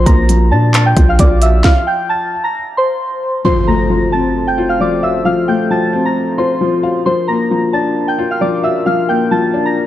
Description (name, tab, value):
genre	hip hop, trap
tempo	133 BPM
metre	4/4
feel	half-time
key	F major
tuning	A4 = 440 Hz
part	soft synth bell	melody	0.0-9.8 s	C5 to Bb6	-17 LUFS	right 1 dB	chorus, low-pass filter
part	felt-muted upright piano	accompaniment	0.0-9.9 s	F3 to F5	-16 LUFS	left 4 dB	low-pass filter
part	hard-hitting 808-style bass	bass	0.0-1.6 s	Bb1 to Bb2	-11 LUFS	equal	none
part	trap drum kit	drums	0.1-1.8 s	handclaps, hi-hat, kick drum, snare drum	-12 LUFS	equal	none
part	mellow French horn section	sustained chords	3.4-9.9 s	F3 to C5	-22 LUFS	right 2 dB	none
part	impact	sound effects	3.4-5.3 s	none	-20 LUFS	right 1 dB	none
room	digital ambience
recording	dark, warm production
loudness	-11 LUFS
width	side -12 dB against mid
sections	0.0-3.4 A section; 3.4-9.9 B section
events	stop 1.6-3.4; impact 3.4-5.3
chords	0.0 Bb; 3.4 F